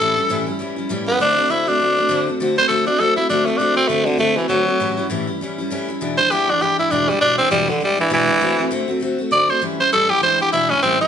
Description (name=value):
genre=rock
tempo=200 BPM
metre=4/4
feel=swing 58% on 8ths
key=unclear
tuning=A4 = 441 Hz
part: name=raspy tenor saxophone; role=melody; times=0.0-11.1 s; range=D3 to D5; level=-16 LUFS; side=equal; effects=none
part: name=picked steel-string acoustic guitar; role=accompaniment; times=0.0-11.1 s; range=E2 to F#4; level=-22 LUFS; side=left 2 dB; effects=none
room=light reverb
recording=band playing live in one room, nothing above 10.9 kHz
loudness=-15 LUFS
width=side -8 dB against mid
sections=0.0-10.8 A section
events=none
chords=0.0 A7; 1.2 D7; 4.8 A7; 6.0 E7; 8.4 D7; 9.6 A7; 10.2 E7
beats=| 0.02 0.32 0.61 0.91 | 1.21 1.51 1.81 2.11 | 2.41 2.71 3.01 3.31 | 3.60 3.90 4.21 4.50 | 4.80 5.11 5.41 5.71 | 6.01 6.31 6.61 6.91 | 7.21 7.51 7.82 8.12 | 8.42 8.72 9.02 9.33 | 9.63 9.93 10.23 10.54 | 10.84